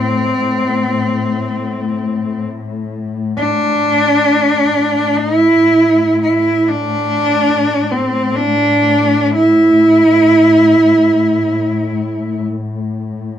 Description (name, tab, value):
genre	caucasian folk, Caucasian lament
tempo	free time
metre	none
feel	none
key	A minor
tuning	A4 = 438 Hz
part	rich cello	melody	0.0-12.4 s	C4 to E4	-12 LUFS	right 1 dB	none
part	dark chamber string section	drone	0.0-13.4 s	A2	-20 LUFS	left 4 dB	none
room	studio reverb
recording	dry, close 1970s-style studio recording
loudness	-11 LUFS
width	side -10 dB against mid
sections	0.0-13.4 A section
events	none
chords	none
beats	free time